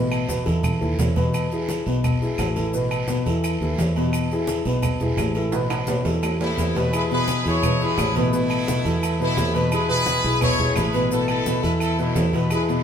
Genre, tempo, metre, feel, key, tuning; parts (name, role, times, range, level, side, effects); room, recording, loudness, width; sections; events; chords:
latin, salsa; 172 BPM; 4/4; straight; A4 = 443 Hz
dark upright piano; accompaniment; 0.0-12.8 s; B2 to B4; -24 LUFS; left 1 dB
fingered electric bass; bass; 0.0-12.8 s; A1 to E2; -25 LUFS; equal
agogo bells and timbales; percussion; 0.1-12.7 s; -31 LUFS; right 3 dB
claves; percussion; 0.1-12.7 s; -36 LUFS; equal
congas; percussion; 0.1-12.8 s; -29 LUFS; equal
maracas; percussion; 0.1-12.8 s; -40 LUFS; left 3 dB
guiro; percussion; 0.3-12.8 s; -38 LUFS; right 3 dB
bright horn section; melody; 6.4-12.8 s; A3 to C#5; -24 LUFS; left 1 dB; slapback echo
wet stone room reverb, RT60 1.3 s; band playing live in one room; -19 LUFS; side -8 dB against mid
0.0-6.9 A section; 6.9-12.8 B section
drum fill 0.3-1.3, 5.5-6.9
0.0 Asus2; 1.3 E; 2.7 Asus2; 4.1 E; 5.5 Asus2; 6.9 E; 8.3 Asus2; 9.7 E; 11.1 Asus2